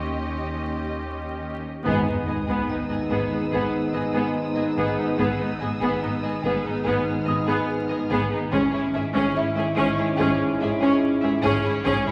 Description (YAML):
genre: cinematic, suspense film score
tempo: 72 BPM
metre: 4/4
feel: straight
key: G# harmonic minor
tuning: A4 = 439 Hz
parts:
  - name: rich studio violin section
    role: melody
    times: 0.0-12.1 s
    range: G#4 to E5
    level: -34 LUFS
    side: equal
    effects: none
  - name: warm studio violin section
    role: second line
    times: 0.0-12.1 s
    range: B3 to G#4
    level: -32 LUFS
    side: equal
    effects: none
  - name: warm studio viola section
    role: accompaniment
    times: 0.0-12.1 s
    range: B3 to Db4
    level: -30 LUFS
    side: equal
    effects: none
  - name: warm studio cello section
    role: bass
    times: 0.0-12.1 s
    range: Eb2 to G#2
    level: -35 LUFS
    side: equal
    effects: none
  - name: analog drone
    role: drone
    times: 0.0-12.1 s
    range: G#1 to Eb2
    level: -36 LUFS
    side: equal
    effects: chorus
  - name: music box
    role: texture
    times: 0.0-11.8 s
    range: Db5 to D#6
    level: -36 LUFS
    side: equal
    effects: none
  - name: rich studio violin section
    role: texture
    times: 0.0-12.1 s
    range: G#5 to E6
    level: -43 LUFS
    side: equal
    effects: none
  - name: clear trombone section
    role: sustained chords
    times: 1.8-12.1 s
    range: G#2 to G#3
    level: -36 LUFS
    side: equal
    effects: none
  - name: rich studio double bass section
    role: bass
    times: 1.8-11.9 s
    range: G#1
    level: -36 LUFS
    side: equal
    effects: none
  - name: warm French horn section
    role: sustained chords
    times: 1.9-12.1 s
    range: B3 to E4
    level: -30 LUFS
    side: equal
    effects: none
  - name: solo taiko drums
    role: drums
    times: 1.9-12.1 s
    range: none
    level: -40 LUFS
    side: equal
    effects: none
  - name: timpani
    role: percussion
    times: 1.9-3.1 s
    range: none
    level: barely audible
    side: none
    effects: none
  - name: sub drop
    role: sound effects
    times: 2.0-5.2 s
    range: none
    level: -39 LUFS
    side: equal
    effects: none
room: wet scoring stage reverb, RT60 1.7 s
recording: vinyl crackle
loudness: -24 LUFS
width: mono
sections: 0.0-1.9 A section; 1.9-12.1 B section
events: band accent 1.9-2.7; impact 1.9-5.2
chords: 0.0 Eb7; 1.9 G#m; 8.5 C#m/G#